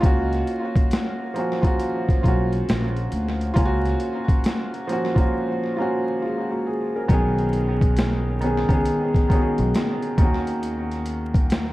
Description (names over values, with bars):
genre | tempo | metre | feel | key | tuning
lo-fi hip hop | 68 BPM | 4/4 | swing 64% on 16ths | F# major | A4 = 438 Hz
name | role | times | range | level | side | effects
felt-muted upright piano | accompaniment | 0.0-11.7 s | D#3 to C#5 | -23 LUFS | equal | tape echo
upright bass | bass | 0.0-11.7 s | A#1 to D#2 | -25 LUFS | equal | none
boom bap sampler-style drum kit | drums | 0.0-11.7 s | hi-hat, kick drum, snare drum | -21 LUFS | equal | none
room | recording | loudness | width
light reverb | echo-heavy mix, vinyl crackle | -20 LUFS | side -18 dB against mid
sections
0.0-7.1 A section; 7.1-11.7 B section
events
break 5.3-7.1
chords
0.0 F#maj7; 7.1 B69; 10.2 D#m7